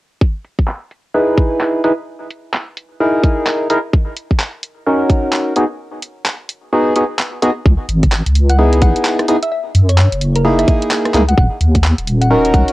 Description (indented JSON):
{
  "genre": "UK garage, two-step garage",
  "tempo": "129 BPM",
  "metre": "4/4",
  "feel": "swing 61% on 16ths",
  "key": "unclear",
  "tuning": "A4 = 439 Hz",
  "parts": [
    { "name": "electronic kick drum", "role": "drums", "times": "0.2-12.7 s", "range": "none", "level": "-13 LUFS", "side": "equal", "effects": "overdrive, cassette tape" },
    { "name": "garage drum kit", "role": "drums", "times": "0.4-12.7 s", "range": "handclaps, hi-hat, rim click", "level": "-20 LUFS", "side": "equal", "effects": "overdrive, low-pass filter on hats, cassette tape, low-pass filter on snare" },
    { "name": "percussive organ stab", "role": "stabs", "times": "1.1-12.7 s", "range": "A#3 to B4", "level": "-15 LUFS", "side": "equal", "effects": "lush chorus, cassette tape, tape echo" },
    { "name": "deep soft wobble bass", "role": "bass", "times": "7.7-12.7 s", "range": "D#1 to F#2", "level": "-12 LUFS", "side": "equal", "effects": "chorus" },
    { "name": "thumb-piano-like synth pluck", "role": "melody", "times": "8.5-12.7 s", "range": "A#4 to F#5", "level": "-21 LUFS", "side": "left 1 dB", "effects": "chorus, phaser, cassette tape" }
  ],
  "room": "light reverb",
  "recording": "home recording on cassette",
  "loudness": "-12 LUFS",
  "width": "side -18 dB against mid",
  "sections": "0.2-7.7 A section; 7.7-12.7 B section",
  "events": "filter sweep on drum 0.2-7.7; filter sweep on synth stab 0.2-7.7; kick drops out 6.7-7.7",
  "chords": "0.2 Emaj7/D#; 2.1 Emaj7#11/D#; 3.9 D#m7; 5.6 B6; 7.7 C#m9; 9.5 F#13; 11.4 D#m7",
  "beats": "| 0.21 0.68 1.14 1.61 | 2.07 2.54 3.00 3.47 | 3.93 4.40 4.86 5.33 | 5.79 6.26 6.72 7.19 | 7.66 8.12 8.59 9.05 | 9.52 9.98 10.45 10.91 | 11.38 11.84 12.31"
}